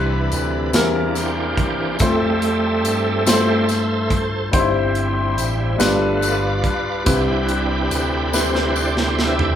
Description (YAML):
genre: slow gospel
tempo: 47 BPM (dotted quarters)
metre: 6/8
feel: straight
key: C major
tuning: A4 = 443 Hz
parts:
  - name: warm baby grand piano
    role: accompaniment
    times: 0.0-9.6 s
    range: G2 to C5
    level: -21 LUFS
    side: left 2 dB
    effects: none
  - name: bright tonewheel organ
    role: sustained chords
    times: 0.0-9.6 s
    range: E3 to E5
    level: -22 LUFS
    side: right 2 dB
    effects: slow rotary speaker, chorus vibrato
  - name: slap bass with an envelope filter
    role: bass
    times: 0.0-9.6 s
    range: G1 to G2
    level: -24 LUFS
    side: equal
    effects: none
  - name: tight funk drum kit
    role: drums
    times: 0.3-9.6 s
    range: hi-hat, kick drum, snare drum, toms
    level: -22 LUFS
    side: right 1 dB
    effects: none
  - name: tambourine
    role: percussion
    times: 0.3-9.2 s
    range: none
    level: -31 LUFS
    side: left 5 dB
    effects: none
room: wet large studio reverb, RT60 0.8 s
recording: band playing live in one room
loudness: -16 LUFS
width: side -10 dB against mid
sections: 0.0-9.6 A section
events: tonewheel organ solo 0.0-9.6; drum fill 8.3-9.6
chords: 0.0 Cmaj7; 0.7 C7/E; 2.0 Fmaj7; 4.5 C/G; 5.8 G7; 7.1 Cmaj7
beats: 0.74 | 2.01 3.27 | 4.54 5.80 | 7.07 8.34